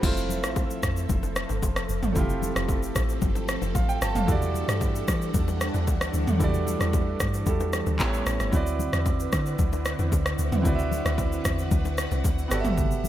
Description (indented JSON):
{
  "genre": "amapiano",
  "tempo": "113 BPM",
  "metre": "4/4",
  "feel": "straight",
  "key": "unclear",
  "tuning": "A4 = 445 Hz",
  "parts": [
    { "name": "clear concert grand piano", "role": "accompaniment", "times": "0.0-13.1 s", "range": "G3 to A5", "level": "-31 LUFS", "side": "right 4 dB", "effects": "none" },
    { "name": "string machine, violas", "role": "sustained chords", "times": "0.0-13.1 s", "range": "D3 to F#5", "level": "-33 LUFS", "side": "equal", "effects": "ensemble chorus, sidechain pumping" },
    { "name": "deep log drum bass", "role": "bass", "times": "0.0-13.1 s", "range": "F1 to E3", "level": "-28 LUFS", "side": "equal", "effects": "none" },
    { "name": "deep house drum kit", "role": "drums", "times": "0.0-13.1 s", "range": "crash cymbal, handclaps, kick drum, rim click, shaker, toms", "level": "-27 LUFS", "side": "equal", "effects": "gated reverb" },
    { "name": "congas and bongos", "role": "percussion", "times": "0.0-13.1 s", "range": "none", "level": "-35 LUFS", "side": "left 8 dB", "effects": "none" }
  ],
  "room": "light reverb, digital ambience",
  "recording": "bright 1980s-style digital production",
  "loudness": "-23 LUFS",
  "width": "side -12 dB against mid",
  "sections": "0.0-13.1 A section",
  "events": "drop 0.0-13.1",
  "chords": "0.0 Fmaj7; 4.3 Em11; 8.0 A9; 8.5 D13; 12.5 Gmaj13"
}